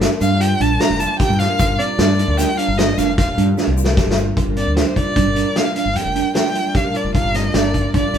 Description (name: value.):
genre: progressive instrumental, band music in an uneven meter.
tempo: 151 BPM.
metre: 7/4.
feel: straight.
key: G minor.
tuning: A4 = 436 Hz.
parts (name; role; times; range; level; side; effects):
chorused pulse-width pad; accompaniment; 0.0-8.2 s; G3 to Bb4; -24 LUFS; right 1 dB; none.
bell-like tine electric piano; arpeggios; 0.0-8.2 s; C4 to G4; -23 LUFS; right 9 dB; none.
mellow fretless electric bass; bass; 0.0-8.2 s; F1 to G2; -20 LUFS; left 1 dB; none.
vintage drum kit; drums; 0.0-8.2 s; hi-hat, kick drum, snare drum; -20 LUFS; left 1 dB; none.
rich violin; melody; 0.2-8.2 s; C5 to Bb5; -21 LUFS; equal; none.
egg shaker; percussion; 0.2-4.3 s; none; -36 LUFS; left 6 dB; none.
room: moderate studio reverb, RT60 0.8 s.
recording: band playing live in one room.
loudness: -15 LUFS.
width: side -8 dB against mid.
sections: 0.0-4.4 A section; 4.4-8.2 B section.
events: violin solo 0.0-4.4; drum fill 3.6-4.4.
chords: 0.0 Gm7.